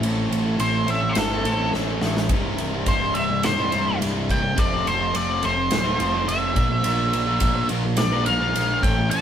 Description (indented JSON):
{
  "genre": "quiet-loud alternative rock",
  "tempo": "106 BPM",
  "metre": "4/4",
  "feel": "straight",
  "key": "unclear",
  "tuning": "A4 = 445 Hz",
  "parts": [
    { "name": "twelve-string electric guitar", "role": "arpeggios", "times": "0.0-2.3 s", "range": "A2 to A4", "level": "-30 LUFS", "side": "left 4 dB", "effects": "none" },
    { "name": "thick fuzz guitar", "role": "riff", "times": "0.0-9.2 s", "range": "C2 to Bb4", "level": "-25 LUFS", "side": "equal", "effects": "distortion" },
    { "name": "fuzz picked electric bass", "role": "bass", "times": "0.0-9.2 s", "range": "C1 to Bb1", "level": "-27 LUFS", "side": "equal", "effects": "overdrive" },
    { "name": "big rock drum kit", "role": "drums", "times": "0.0-9.2 s", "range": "kick drum, ride cymbal, snare drum", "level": "-26 LUFS", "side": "equal", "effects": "none" },
    { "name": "octave-fuzz lead guitar", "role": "melody", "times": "0.6-9.2 s", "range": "A4 to A5", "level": "-23 LUFS", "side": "equal", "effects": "distortion" }
  ],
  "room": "moderate studio reverb, RT60 0.8 s",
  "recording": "band playing live in one room",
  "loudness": "-19 LUFS",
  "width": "side -9 dB against mid",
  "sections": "0.0-9.2 A section",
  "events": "half time 0.0-9.2; lead electric guitar solo 0.0-9.2; drum fill 1.7-2.3",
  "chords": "0.0 Am; 2.3 C; 4.6 F; 6.6 Bb",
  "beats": "| 0.02 0.59 1.16 1.73 | 2.30 2.87 3.44 4.01 | 4.58 5.15 5.72 6.29 | 6.85 7.42 7.99 8.56 | 9.13"
}